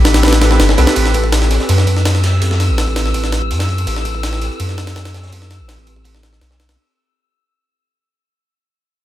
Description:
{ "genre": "drum and bass, jungle", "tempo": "165 BPM", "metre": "4/4", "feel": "straight", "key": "A dorian", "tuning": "A4 = 440 Hz", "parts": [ { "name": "warbly tape-like pad", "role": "sustained chords", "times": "0.0-6.6 s", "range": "C4 to B4", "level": "-23 LUFS", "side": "equal", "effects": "chorus, built-in reverb" }, { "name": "soft dub sub bass", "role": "bass", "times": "0.0-6.8 s", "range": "G1 to F#2", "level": "-15 LUFS", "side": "equal", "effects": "tube saturation" }, { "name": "wind-like tuned noise texture", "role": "texture", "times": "0.0-6.8 s", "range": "E6 to B6", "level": "-27 LUFS", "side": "left 1 dB", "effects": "built-in reverb" }, { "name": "crunchy breakbeat drum kit", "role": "drums", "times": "0.1-6.7 s", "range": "hi-hat, snare drum", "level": "-29 LUFS", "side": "right 1 dB", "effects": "high-pass filter on hats, high-pass filter on snare, high-pass filter on room" }, { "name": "jungle sampler-style drum kit", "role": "drums", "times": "0.1-6.8 s", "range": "kick drum, ride cymbal, snare drum", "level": "-18 LUFS", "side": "equal", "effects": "high-pass filter on snare, high-pass filter on kick, high-pass filter on cymbals, high-pass filter on room" }, { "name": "clear concert grand piano", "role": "stabs", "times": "0.2-1.1 s", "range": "C4 to B4", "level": "-20 LUFS", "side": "right 3 dB", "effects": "vintage 12-bit sampler grit, dub echo" } ], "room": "little or no reverb", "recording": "none", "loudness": "-12 LUFS", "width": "side -13 dB against mid", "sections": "1.0-6.8 A section", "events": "fade-out 1.0-6.8; filter sweep on ambient pad 1.0-6.8", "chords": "0.0 Am9" }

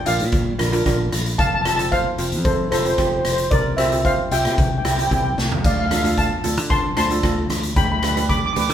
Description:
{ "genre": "calypso", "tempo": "113 BPM", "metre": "4/4", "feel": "straight", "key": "F major", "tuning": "A4 = 440 Hz", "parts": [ { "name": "steel pan", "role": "melody", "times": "0.0-8.7 s", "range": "A4 to D6", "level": "-21 LUFS", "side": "equal", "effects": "none" }, { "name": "steel pan", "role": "accompaniment", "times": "0.1-8.7 s", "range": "C4 to C5", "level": "-26 LUFS", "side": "right 3 dB", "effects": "none" }, { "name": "fingered electric bass", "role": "bass", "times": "0.1-8.7 s", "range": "F1 to D3", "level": "-24 LUFS", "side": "equal", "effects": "none" }, { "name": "street-band drum kit", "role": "drums", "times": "0.1-8.7 s", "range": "crash cymbal, hi-hat, kick drum, rim click, snare drum, toms", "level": "-22 LUFS", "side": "equal", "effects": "none" }, { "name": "congas", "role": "percussion", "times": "5.9-8.7 s", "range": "none", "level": "-30 LUFS", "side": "right 1 dB", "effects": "none" } ], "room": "wet large studio reverb, RT60 0.9 s", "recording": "band playing live in one room", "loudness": "-17 LUFS", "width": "side -10 dB against mid", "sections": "0.0-8.7 A section", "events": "drum fill 5.4", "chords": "0.0 Bb; 1.4 F; 3.5 C7sus4; 4.6 C; 5.6 Dm7; 7.8 G/D" }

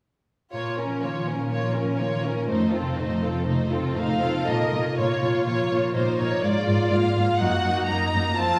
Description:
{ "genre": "classical", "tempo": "123 BPM", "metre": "4/4", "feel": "rubato", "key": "Bb minor", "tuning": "A4 = 441 Hz", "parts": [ { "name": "warm symphonic violin section", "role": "melody", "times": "0.5-8.6 s", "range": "A4 to Bb5", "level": "-29 LUFS", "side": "equal", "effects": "none" }, { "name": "rich studio violin section", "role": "second line", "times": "0.5-8.6 s", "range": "Db4 to Bb4", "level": "-32 LUFS", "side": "equal", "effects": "none" }, { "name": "rich symphonic viola section", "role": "accompaniment", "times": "0.5-8.6 s", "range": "A3 to F4", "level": "-30 LUFS", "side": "equal", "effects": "none" }, { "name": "concert harp", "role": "arpeggios", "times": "0.5-8.6 s", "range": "F2 to Bb4", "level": "-32 LUFS", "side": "equal", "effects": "none" }, { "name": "dark studio cello section", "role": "bass", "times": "0.5-8.6 s", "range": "F2 to Bb2", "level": "-31 LUFS", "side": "equal", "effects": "none" } ], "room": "wet recital hall reverb, RT60 1.8 s", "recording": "heard from further back in the room", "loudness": "-24 LUFS", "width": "mono", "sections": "0.5-4.5 A section; 4.5-8.6 B section", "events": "none", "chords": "0.5 Bbm; 2.5 F7; 4.5 Bbm; 6.4 Bb7/Ab; 7.4 Ebm/Gb" }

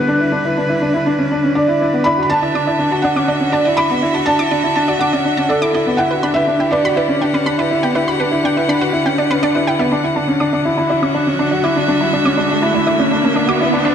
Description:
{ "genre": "piano and strings electronica", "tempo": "122 BPM", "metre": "4/4", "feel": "straight", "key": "D major", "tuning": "A4 = 441 Hz", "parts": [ { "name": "felt-muted upright piano", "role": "melody", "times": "0.0-9.4 s", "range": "A4 to B5", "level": "-19 LUFS", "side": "right 1 dB", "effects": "none" }, { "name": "rich string quartet", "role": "sustained chords", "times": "0.0-13.9 s", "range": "D3 to F#5", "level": "-20 LUFS", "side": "equal", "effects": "none" }, { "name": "warm upright piano", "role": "riff", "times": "0.0-13.9 s", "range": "B3 to F#4", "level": "-17 LUFS", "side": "left 1 dB", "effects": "digital delay" }, { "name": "analog pluck", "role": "arpeggios", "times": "2.1-13.9 s", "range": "B4 to D6", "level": "-23 LUFS", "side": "right 3 dB", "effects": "chorus, digital delay" }, { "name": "riser", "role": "sound effects", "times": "10.9-13.9 s", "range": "none", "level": "-21 LUFS", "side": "right 2 dB", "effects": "none" } ], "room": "wet lush hall reverb, RT60 2.0 s", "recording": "dark, warm production", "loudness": "-13 LUFS", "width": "side -8 dB against mid", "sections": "0.0-9.9 A section; 9.9-13.9 B section", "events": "build-up 9.9-13.9; riser 10.9-13.9", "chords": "0.0 G/D; 2.1 Dadd9; 6.0 Em7/D; 9.9 Dadd9" }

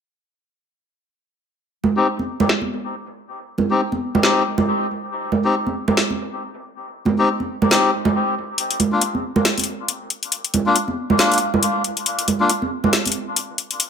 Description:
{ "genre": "deep dubstep", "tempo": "138 BPM", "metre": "4/4", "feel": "swing 57% on 16ths, half-time", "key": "C minor", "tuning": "A4 = 440 Hz", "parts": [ { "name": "congas", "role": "percussion", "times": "1.8-13.1 s", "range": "none", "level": "-21 LUFS", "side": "right 4 dB", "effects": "dub echo" }, { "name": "melodica", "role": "stabs", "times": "2.0-12.5 s", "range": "Bb3 to G4", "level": "-21 LUFS", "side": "left 3 dB", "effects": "low-pass filter, dub echo" }, { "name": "garage drum kit", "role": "drums", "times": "2.5-13.9 s", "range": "hi-hat, snare drum", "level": "-19 LUFS", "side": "left 2 dB", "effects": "low-pass filter on snare, low-pass filter on hats" } ], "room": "moderate digital room reverb, RT60 1.1 s, small room ambience", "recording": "none", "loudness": "-17 LUFS", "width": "side -7 dB against mid", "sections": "1.6-13.9 A section", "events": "none", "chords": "1.6 Cm; 8.6 Bb" }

